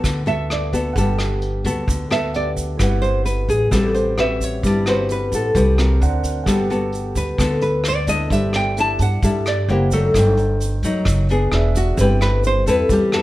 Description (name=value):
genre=bossa nova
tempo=131 BPM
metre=4/4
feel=straight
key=G major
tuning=A4 = 441 Hz
part: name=dark concert grand piano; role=accompaniment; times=0.0-13.2 s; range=C4 to A5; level=-30 LUFS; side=right 4 dB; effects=none
part: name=nylon-string guitar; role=accompaniment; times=0.0-13.2 s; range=G2 to B4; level=-21 LUFS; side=left 2 dB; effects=none
part: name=upright bass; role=bass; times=0.0-13.2 s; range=E1 to G2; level=-20 LUFS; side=equal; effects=none
part: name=vintage brush drum kit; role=drums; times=0.0-13.2 s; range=hi-hat, kick drum, rim click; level=-26 LUFS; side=equal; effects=none
part: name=egg shaker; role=percussion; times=0.0-13.2 s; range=none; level=-34 LUFS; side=right 4 dB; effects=none
part: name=nylon-string guitar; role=melody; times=0.3-13.2 s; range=E4 to A5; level=-21 LUFS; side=equal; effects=none
room=light reverb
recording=none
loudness=-16 LUFS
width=side -16 dB against mid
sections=0.0-13.2 A section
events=nylon-string guitar solo 0.0-13.2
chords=0.0 Gmaj9; 2.8 Am13/G; 6.0 Daug7; 6.5 Gmaj9; 8.3 C69/G; 9.7 F#7b9; 10.1 B7b9b13/G; 11.5 E7; 12.0 Am9/G